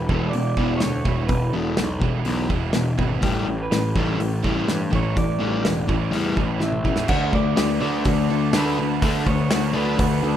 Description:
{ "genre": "indie rock", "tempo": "124 BPM", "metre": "4/4", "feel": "straight", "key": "D major", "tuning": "A4 = 438 Hz", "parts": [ { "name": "electric guitar through a small old amp", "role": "melody", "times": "0.0-10.4 s", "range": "G4 to F#5", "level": "-30 LUFS", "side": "right 4 dB", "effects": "spring reverb, slapback echo" }, { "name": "overdriven semi-hollow guitar", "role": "riff", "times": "0.0-10.4 s", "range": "E2 to D4", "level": "-23 LUFS", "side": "left 3 dB", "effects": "none" }, { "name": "fuzz picked electric bass", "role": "bass", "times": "0.0-10.4 s", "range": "E1 to G2", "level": "-26 LUFS", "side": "equal", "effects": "overdrive" }, { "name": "overdriven electric guitar", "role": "riff", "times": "0.1-10.4 s", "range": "D3 to A4", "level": "-32 LUFS", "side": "right 11 dB", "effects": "ensemble chorus" }, { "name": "loose indie drum kit", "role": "drums", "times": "0.1-10.1 s", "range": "crash cymbal, hi-hat, kick drum, snare drum, toms", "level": "-25 LUFS", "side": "equal", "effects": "none" }, { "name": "phased analog pad", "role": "sustained chords", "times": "7.7-10.4 s", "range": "D4 to A5", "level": "-33 LUFS", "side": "right 4 dB", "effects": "phaser, chorus" } ], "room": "light reverb, small room ambience", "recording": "rough home demo mix", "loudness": "-19 LUFS", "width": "side -10 dB against mid", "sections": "0.0-7.1 A section; 7.1-10.4 B section", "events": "drum fill 6.6-7.1", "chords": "0.0 Em; 3.2 A7sus4; 7.1 D6" }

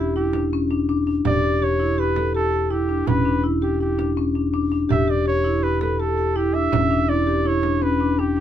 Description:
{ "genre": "contemporary instrumental, chamber music in an uneven meter", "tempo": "164 BPM", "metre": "5/4", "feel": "straight", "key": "E dorian", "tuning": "A4 = 439 Hz", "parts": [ { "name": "warm flugelhorn", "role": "melody", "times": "0.0-8.4 s", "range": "E4 to E5", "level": "-25 LUFS", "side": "right 2 dB", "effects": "none" }, { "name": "marimba with medium mallets", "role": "arpeggios", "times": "0.0-8.4 s", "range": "C#4 to A4", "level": "-21 LUFS", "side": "left 2 dB", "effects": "none" }, { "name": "fingered electric bass", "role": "bass", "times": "0.0-8.4 s", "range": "E1", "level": "-25 LUFS", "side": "right 2 dB", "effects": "none" }, { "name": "frame drum", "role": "percussion", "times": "0.3-8.3 s", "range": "none", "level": "-27 LUFS", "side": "right 9 dB", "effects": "none" } ], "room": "light reverb", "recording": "minimal, uncompressed stereo recording", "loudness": "-18 LUFS", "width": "side -10 dB against mid", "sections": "0.0-8.4 A section", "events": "none", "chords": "0.0 Em7" }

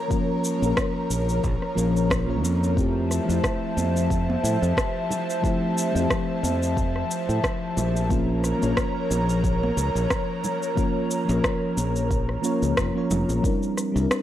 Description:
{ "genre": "sunset chillout", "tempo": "90 BPM", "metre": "4/4", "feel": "swing 56% on 16ths", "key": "F major", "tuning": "A4 = 440 Hz", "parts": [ { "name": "mellow FM electric piano", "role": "accompaniment", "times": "0.0-14.2 s", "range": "F3 to Db5", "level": "-27 LUFS", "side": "left 1 dB", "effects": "chorus, auto-pan, analog delay" }, { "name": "airy breathy pad", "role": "sustained chords", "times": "0.0-13.4 s", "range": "F3 to Bb5", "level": "-27 LUFS", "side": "equal", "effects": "chorus" }, { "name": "electronic kick drum", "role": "drums", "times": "0.1-13.6 s", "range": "none", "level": "-27 LUFS", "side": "equal", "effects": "none" }, { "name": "electronic shaker and rim click", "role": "drums", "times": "0.1-14.2 s", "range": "none", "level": "-28 LUFS", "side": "equal", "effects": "none" }, { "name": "fingered electric bass", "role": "bass", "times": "0.6-14.1 s", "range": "F1 to A2", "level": "-25 LUFS", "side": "equal", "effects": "none" }, { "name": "congas", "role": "percussion", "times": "3.8-13.4 s", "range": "none", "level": "-32 LUFS", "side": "right 2 dB", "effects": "none" } ], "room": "light reverb, digital ambience", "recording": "dry, gritty hardware recording", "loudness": "-21 LUFS", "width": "side -12 dB against mid", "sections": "0.0-13.4 A section", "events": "none", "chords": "0.0 Bbm; 2.8 Fmaj7; 8.1 Bbm; 13.4 C7" }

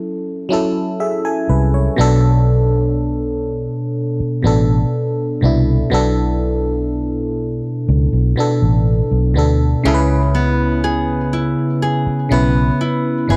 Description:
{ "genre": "contemporary R&B", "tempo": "61 BPM", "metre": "4/4", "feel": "straight", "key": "B dorian", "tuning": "A4 = 440 Hz", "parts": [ { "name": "FM electric piano", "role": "accompaniment", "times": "0.0-13.4 s", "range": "B2 to G#5", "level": "-20 LUFS", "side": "equal", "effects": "chorus" }, { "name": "downlifter", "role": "sound effects", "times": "0.0-2.0 s", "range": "none", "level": "-54 LUFS", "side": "equal", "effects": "none" }, { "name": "vintage muted fingered electric bass", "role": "bass", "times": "1.5-13.4 s", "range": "G1 to D2", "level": "-19 LUFS", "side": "equal", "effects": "none" }, { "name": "nylon-string guitar", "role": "arpeggios", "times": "9.9-13.4 s", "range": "C#3 to G#4", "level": "-22 LUFS", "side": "equal", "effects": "none" } ], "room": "little or no reverb", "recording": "dry, gritty hardware recording, cassette tape", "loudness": "-17 LUFS", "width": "mono", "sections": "0.0-13.4 A section", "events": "FM electric piano fill 0.5-2.0", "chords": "0.0 F#m7; 2.0 Bm7; 9.9 C#m7" }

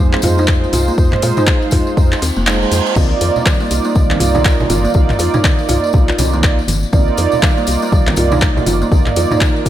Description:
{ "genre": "afro house", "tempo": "121 BPM", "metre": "4/4", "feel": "swing 60% on 16ths", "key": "C minor", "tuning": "A4 = 440 Hz", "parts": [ { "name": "kalimba", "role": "arpeggios", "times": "0.0-9.7 s", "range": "G3 to F4", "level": "-20 LUFS", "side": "left 1 dB", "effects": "sidechain pumping, ping-pong delay" }, { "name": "mellow synth brass", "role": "stabs", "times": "0.0-9.7 s", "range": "Ab3 to D5", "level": "-18 LUFS", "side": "right 4 dB", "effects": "chorus, sidechain pumping, ping-pong delay" }, { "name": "woody FM bass", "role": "bass", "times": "0.0-9.7 s", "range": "F1 to Bb2", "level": "-18 LUFS", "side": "left 1 dB", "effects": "sidechain pumping" }, { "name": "deep house drum kit", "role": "drums", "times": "0.1-9.7 s", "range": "crash cymbal, handclaps, hi-hat, toms", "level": "-19 LUFS", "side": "equal", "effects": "none" }, { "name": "tambourine", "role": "percussion", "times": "0.1-9.7 s", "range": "none", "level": "-28 LUFS", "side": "left 6 dB", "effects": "none" }, { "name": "electronic kick drum", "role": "drums", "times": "0.5-9.7 s", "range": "none", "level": "-14 LUFS", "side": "left 1 dB", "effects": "none" }, { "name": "reverse cymbal", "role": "sound effects", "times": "2.2-3.0 s", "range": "none", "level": "-24 LUFS", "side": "right 5 dB", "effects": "none" }, { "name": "congas", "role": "percussion", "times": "3.0-9.5 s", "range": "none", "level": "-23 LUFS", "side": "right 3 dB", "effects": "none" } ], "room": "digital ambience", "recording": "none", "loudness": "-11 LUFS", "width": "side -12 dB against mid", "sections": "0.0-9.7 A section", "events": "reverse cymbal 2.2-3.0; kick drops out 2.5-3.0", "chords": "0.0 Fm7; 3.0 Cm11" }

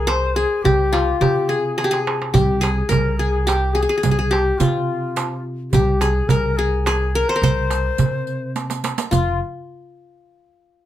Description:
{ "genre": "Arabic maqam ensemble", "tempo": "106 BPM", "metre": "3/4", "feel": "straight", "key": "C maqam bayati", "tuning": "A4 = 438 Hz", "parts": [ { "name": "qanun", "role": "melody", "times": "0.0-9.4 s", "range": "F4 to C5", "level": "-21 LUFS", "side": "left 2 dB", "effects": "none" }, { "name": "breathy bright low ney", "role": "second line", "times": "0.0-9.4 s", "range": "F4 to C5", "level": "-26 LUFS", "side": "left 6 dB", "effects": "none" }, { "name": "upright bass", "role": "bass", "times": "0.0-9.4 s", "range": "F1 to C3", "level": "-22 LUFS", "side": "equal", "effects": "none" }, { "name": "darbuka", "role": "percussion", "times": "0.1-9.4 s", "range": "none", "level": "-22 LUFS", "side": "right 4 dB", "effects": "none" }, { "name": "riq", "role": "percussion", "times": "2.3-9.4 s", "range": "none", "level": "-29 LUFS", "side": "right 8 dB", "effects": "none" } ], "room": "moderate studio reverb, RT60 0.6 s", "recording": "close, detailed microphones", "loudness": "-17 LUFS", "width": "side -12 dB against mid", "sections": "0.0-9.1 A section; 9.1-10.8 B section", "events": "drum fill 1.8-2.3, 8.6-9.1", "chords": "none" }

